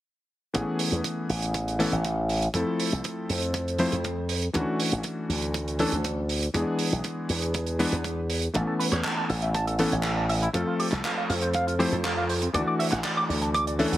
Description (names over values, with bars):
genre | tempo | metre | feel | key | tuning
nu-disco, nu disco | 120 BPM | 4/4 | straight | A major | A4 = 441 Hz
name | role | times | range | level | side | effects
warm electric grand piano | accompaniment | 0.5-13.9 s | E3 to C5 | -28 LUFS | left 1 dB | digital delay
slap bass with an envelope filter | bass | 0.5-14.0 s | A1 to F2 | -28 LUFS | equal | none
damped 70s drum kit | drums | 0.5-14.0 s | handclaps, hi-hat | -32 LUFS | right 3 dB | none
kick drum | drums | 0.5-13.6 s | none | -33 LUFS | equal | high-pass filter on kick, high-pass filter on snare, high-pass filter on room
electric guitar with an envelope filter | riff | 8.5-14.0 s | C4 to D6 | -30 LUFS | right 1 dB | wide subtle chorus
room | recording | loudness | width
moderate plate reverb, RT60 1.2 s, small room reverb | heavily compressed radio sound | -24 LUFS | side -14 dB against mid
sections
0.5-14.0 A section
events
none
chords
0.5 Amaj9; 2.5 Fmaj7; 4.5 Dmaj9; 6.5 E7; 8.5 Aadd9; 10.5 F; 12.5 Dadd9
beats
| 0.55 1.04 1.54 2.04 | 2.54 3.04 3.54 4.04 | 4.54 5.04 5.54 6.04 | 6.54 7.04 7.54 8.04 | 8.54 9.04 9.54 10.04 | 10.54 11.04 11.54 12.04 | 12.54 13.04 13.54